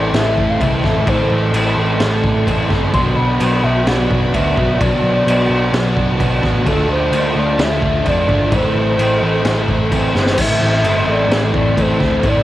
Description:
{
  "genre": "rock, shoegaze and dream pop",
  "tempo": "129 BPM",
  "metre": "4/4",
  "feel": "straight",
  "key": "A minor",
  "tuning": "A4 = 437 Hz",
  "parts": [
    { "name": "pure sine lead", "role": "melody", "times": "0.0-12.4 s", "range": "A4 to C6", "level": "-20 LUFS", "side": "left 1 dB", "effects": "chorus, cassette tape, tape echo" },
    { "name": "string machine, violas", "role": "sustained chords", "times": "0.0-12.4 s", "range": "F4 to C6", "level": "-26 LUFS", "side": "left 1 dB", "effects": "ensemble chorus, cassette tape" },
    { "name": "electric guitar through a small old amp", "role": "arpeggios", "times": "0.0-12.4 s", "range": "E3 to D4", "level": "-29 LUFS", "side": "right 1 dB", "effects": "none" },
    { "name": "crunchy overdriven guitar", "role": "riff", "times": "0.0-12.4 s", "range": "A2 to D4", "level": "-25 LUFS", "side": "equal", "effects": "none" },
    { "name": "overdriven semi-hollow guitar", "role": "riff", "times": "0.0-12.4 s", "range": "A2 to A4", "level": "-22 LUFS", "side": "right 6 dB", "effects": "reverse reverb, cassette tape" },
    { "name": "thick fuzz guitar", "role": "riff", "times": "0.0-12.4 s", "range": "A2 to D4", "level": "-23 LUFS", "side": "left 5 dB", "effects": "distortion, lush chorus, cassette tape" },
    { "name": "vintage muted picked electric bass", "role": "bass", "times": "0.0-12.4 s", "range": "G1 to F2", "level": "-19 LUFS", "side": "equal", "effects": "none" },
    { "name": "raw garage drum kit", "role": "drums", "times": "0.1-12.3 s", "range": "crash cymbal, kick drum, snare drum", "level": "-18 LUFS", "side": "equal", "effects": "cassette tape" }
  ],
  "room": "light reverb",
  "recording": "home recording on cassette",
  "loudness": "-13 LUFS",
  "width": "side -14 dB against mid",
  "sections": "0.0-10.4 A section; 10.4-12.4 B section",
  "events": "drum fill 10.2",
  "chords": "0.0 Am; 2.9 Bm; 6.7 Dm; 8.5 Amadd9; 10.4 Am",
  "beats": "0.15 0.61 | 1.08 1.54 2.01 2.47 | 2.94 3.40 3.87 4.34 | 4.80 5.27 5.74 6.20 | 6.67 7.13 7.60 8.06 | 8.53 8.99 9.45 9.92 | 10.38 10.85 11.31 11.77 | 12.23"
}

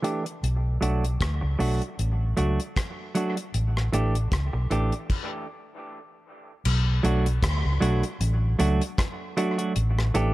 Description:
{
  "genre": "dub reggae",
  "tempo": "77 BPM",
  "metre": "4/4",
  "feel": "swing 56% on 16ths",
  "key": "B minor",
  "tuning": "A4 = 440 Hz",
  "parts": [
    { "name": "semi-hollow electric guitar", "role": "accompaniment", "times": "0.0-10.3 s", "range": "E3 to G4", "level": "-28 LUFS", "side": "right 2 dB", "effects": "low-pass filter, dub echo" },
    { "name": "deep reggae drum kit", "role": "drums", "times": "0.0-10.3 s", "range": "crash cymbal, hi-hat, kick drum, rim click", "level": "-30 LUFS", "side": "left 1 dB", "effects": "dub echo" },
    { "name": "vintage muted fingered electric bass", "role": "bass", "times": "0.4-10.3 s", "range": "A1 to D2", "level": "-24 LUFS", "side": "equal", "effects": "none" }
  ],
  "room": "small room reverb",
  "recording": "none",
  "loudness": "-23 LUFS",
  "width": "side -17 dB against mid",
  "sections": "0.0-6.7 A section; 6.7-10.3 B section",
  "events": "filter sweep on clean electric guitar 0.0-6.7; stop 5.1-6.7",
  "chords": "0.4 Bm7; 3.5 A7sus4; 6.7 Bm7; 9.8 A7sus4",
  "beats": "| 0.43 1.21 1.99 2.76 | 3.54 4.32 5.10 5.88 | 6.65 7.43 8.21 8.98 | 9.76"
}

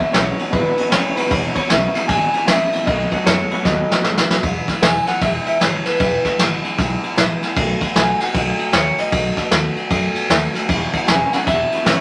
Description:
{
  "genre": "rockabilly",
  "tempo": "154 BPM",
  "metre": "4/4",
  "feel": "swing 63% on 8ths",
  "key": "E major",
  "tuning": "A4 = 440 Hz",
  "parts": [
    { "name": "electric guitar through a small old amp", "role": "melody", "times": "0.0-12.0 s", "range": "B4 to G#5", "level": "-23 LUFS", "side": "equal", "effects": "none" },
    { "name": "picked steel-string acoustic guitar", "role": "accompaniment", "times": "0.0-12.0 s", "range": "E2 to F#4", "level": "-30 LUFS", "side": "equal", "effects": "none" },
    { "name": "electric guitar through a small old amp", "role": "riff", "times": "0.0-4.4, 10.7-12.0 s", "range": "E2 to G#3", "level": "-27 LUFS", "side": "equal", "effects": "tremolo" },
    { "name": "upright bass", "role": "bass", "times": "0.0-12.0 s", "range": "E1 to F#2", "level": "-29 LUFS", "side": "equal", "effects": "none" },
    { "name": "vintage brush drum kit", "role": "drums", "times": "0.0-12.0 s", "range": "kick drum, ride cymbal, snare drum", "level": "-20 LUFS", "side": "equal", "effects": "none" }
  ],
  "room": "moderate studio reverb, RT60 0.7 s",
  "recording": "none",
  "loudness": "-18 LUFS",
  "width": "mono",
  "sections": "0.0-4.4 A section; 4.4-12.0 B section",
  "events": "drum fill 3.7-4.4",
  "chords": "0.0 E; 2.9 B7; 4.4 E; 7.6 B7; 10.7 E",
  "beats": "0.14 0.53 0.92 | 1.31 1.70 2.09 2.48 | 2.87 3.26 3.65 4.04 | 4.43 4.83 5.22 5.61 | 6.00 6.39 6.78 7.17 | 7.56 7.95 8.34 8.73 | 9.12 9.52 9.91 10.30 | 10.69 11.08 11.47 11.86"
}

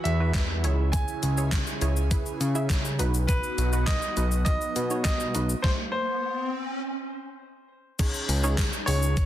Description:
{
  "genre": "dance-pop",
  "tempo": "102 BPM",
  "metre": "4/4",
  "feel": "straight",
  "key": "C# minor",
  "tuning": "A4 = 439 Hz",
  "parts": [
    { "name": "clear baby grand piano", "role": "melody", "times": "0.0-9.3 s", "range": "B4 to G#5", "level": "-32 LUFS", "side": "right 1 dB", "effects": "digital delay" },
    { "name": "funky polysynth comp", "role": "accompaniment", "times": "0.0-9.2 s", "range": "C#4 to E5", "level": "-34 LUFS", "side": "right 3 dB", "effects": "chorus, sidechain pumping" },
    { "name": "airy breathy pad", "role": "sustained chords", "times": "0.0-9.3 s", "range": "C#3 to B4", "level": "-36 LUFS", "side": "right 2 dB", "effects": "chorus, phaser, sidechain pumping" },
    { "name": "fat analog bass", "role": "bass", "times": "0.1-9.3 s", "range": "B1 to C#3", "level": "-25 LUFS", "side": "equal", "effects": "sidechain pumping" },
    { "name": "gated 80s digital drum machine", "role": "drums", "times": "0.1-9.3 s", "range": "crash cymbal, handclaps, hi-hat, kick drum, shaker, snare drum", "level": "-27 LUFS", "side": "equal", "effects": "gated reverb, gated reverb snare, overdrive" },
    { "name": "riser", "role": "sound effects", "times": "4.7-6.8 s", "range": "none", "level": "-35 LUFS", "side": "equal", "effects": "none" },
    { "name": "tambourine", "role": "percussion", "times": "8.0-9.0 s", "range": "none", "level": "-46 LUFS", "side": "left 7 dB", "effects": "none" }
  ],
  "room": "digital ambience",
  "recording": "dense, heavily limited modern master",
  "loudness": "-24 LUFS",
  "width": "side -12 dB against mid",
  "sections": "0.0-8.0 A section; 8.0-9.3 B section",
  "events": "riser 4.7-8.0; stop 5.6-8.0",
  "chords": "0.0 Esus2; 0.6 C#m; 3.0 B; 5.6 N.C.; 8.0 C#sus2",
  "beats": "0.35 | 0.93 1.52 2.11 2.70 | 3.29 3.88 4.46 5.05 | 5.64 6.23 6.82 7.41 | 7.99 8.58 9.17"
}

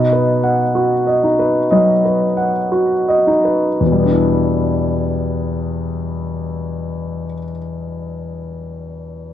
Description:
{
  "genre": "neoclassical minimalist piano",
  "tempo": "54-65 BPM",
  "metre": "4/4",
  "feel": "rubato",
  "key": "unclear",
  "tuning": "A4 = 440 Hz",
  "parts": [
    { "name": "warm concert grand piano", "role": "solo", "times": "0.0-9.3 s", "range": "E2 to F#5", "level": "-15 LUFS", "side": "equal", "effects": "none" }
  ],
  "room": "light reverb",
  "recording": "worn, warbling old tape, cassette tape, warbly pitch drift",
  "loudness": "-14 LUFS",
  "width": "side -11 dB against mid",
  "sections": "0.0-3.8 A section; 3.8-8.1 B section",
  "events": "slowing down 0.0-3.8",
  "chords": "0.0 B; 3.8 Em7",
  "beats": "0.73 1.70 2.71 | 3.80 4.89 5.97 7.06"
}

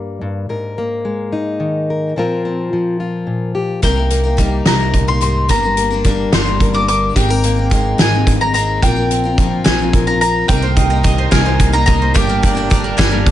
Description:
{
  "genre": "indie folk with a building arrangement",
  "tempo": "72 BPM (dotted quarters)",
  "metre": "6/8",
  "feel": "straight",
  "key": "C minor",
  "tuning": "A4 = 439 Hz",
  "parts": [
    { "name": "fingerpicked plugged-in steel-string acoustic guitar", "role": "accompaniment", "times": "0.0-10.5 s", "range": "G2 to Bb4", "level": "-19 LUFS", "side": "left 2 dB", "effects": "none" },
    { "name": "bowl-back mandolin", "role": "melody", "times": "3.8-13.3 s", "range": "G5 to D6", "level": "-19 LUFS", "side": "equal", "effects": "tape echo" },
    { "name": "picked steel-string acoustic guitar", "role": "accompaniment", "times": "3.8-13.3 s", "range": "G2 to Bb4", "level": "-22 LUFS", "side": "left 5 dB", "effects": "none" },
    { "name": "upright bass", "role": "bass", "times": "3.8-13.3 s", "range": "G1 to C2", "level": "-18 LUFS", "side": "right 1 dB", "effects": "none" },
    { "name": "loose indie drum kit", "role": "drums", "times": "3.8-13.3 s", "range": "hi-hat, kick drum, snare drum", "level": "-16 LUFS", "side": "equal", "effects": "none" },
    { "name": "dark upright piano", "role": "accompaniment", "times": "10.5-13.3 s", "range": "G1 to Bb4", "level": "-28 LUFS", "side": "right 7 dB", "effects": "none" },
    { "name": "rich studio string section", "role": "sustained chords", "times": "10.5-13.3 s", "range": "C3 to Eb4", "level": "-26 LUFS", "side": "equal", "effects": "none" },
    { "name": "mandolin", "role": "arpeggios", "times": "10.5-13.3 s", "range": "G3 to Bb5", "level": "-23 LUFS", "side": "right 6 dB", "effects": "none" }
  ],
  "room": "light reverb",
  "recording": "nothing above 10.5 kHz",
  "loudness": "-13 LUFS",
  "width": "side -12 dB against mid",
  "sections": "0.0-3.8 A section; 3.8-13.3 B section",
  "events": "build-up 3.8-13.3; drum fill 3.8-13.3",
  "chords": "0.5 Absus2; 2.2 Bbsus2; 3.8 Cm7; 5.5 Gm; 7.2 Abadd9; 8.8 Bbsus2; 10.5 Cm7; 12.2 Gm",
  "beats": "| 0.49 1.33 | 2.16 3.00 | 3.83 4.67 | 5.50 6.33 | 7.17 8.00 | 8.83 9.67 | 10.50 11.33 | 12.16 12.99"
}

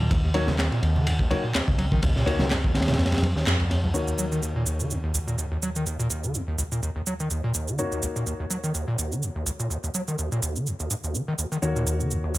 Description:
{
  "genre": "breakbeat, breaks",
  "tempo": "125 BPM",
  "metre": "4/4",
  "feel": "swing 55% on 16ths",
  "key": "Eb minor",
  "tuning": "A4 = 440 Hz",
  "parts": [
    { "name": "overdriven acid bass", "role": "riff", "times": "0.0-12.4 s", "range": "Db2 to Gb3", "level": "-27 LUFS", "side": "equal", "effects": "distortion, lush chorus" },
    { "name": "picked electric bass", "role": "bass", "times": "0.0-12.4 s", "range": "Db2 to F2", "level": "-28 LUFS", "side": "equal", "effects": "low-pass filter" },
    { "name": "congas", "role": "percussion", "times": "0.0-3.9 s", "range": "none", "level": "-31 LUFS", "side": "right 2 dB", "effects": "none" },
    { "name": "crunchy breakbeat drum kit", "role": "drums", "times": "0.1-3.8 s", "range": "kick drum, ride cymbal, snare drum", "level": "-26 LUFS", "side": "equal", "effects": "none" },
    { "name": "clear grand piano", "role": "stabs", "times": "0.3-12.4 s", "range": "Bb3 to Db5", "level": "-32 LUFS", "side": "left 3 dB", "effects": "low-pass filter, ping-pong delay" },
    { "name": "electronic handclaps and shaker", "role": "drums", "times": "0.6-12.4 s", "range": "none", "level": "-30 LUFS", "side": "right 2 dB", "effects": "none" }
  ],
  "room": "light reverb",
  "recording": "none",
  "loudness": "-23 LUFS",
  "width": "side -17 dB against mid",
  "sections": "0.0-3.9 A section; 3.9-12.4 B section",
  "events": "band accent 3.5; filter sweep on grand piano 3.9-12.4",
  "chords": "0.0 Ebm7",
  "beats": "| 0.11 0.59 1.07 1.55 | 2.03 2.51 2.99 3.47 | 3.95 4.43 4.91 5.39 | 5.87 6.35 6.83 7.31 | 7.79 8.27 8.75 9.23 | 9.71 10.19 10.67 11.15 | 11.63 12.11"
}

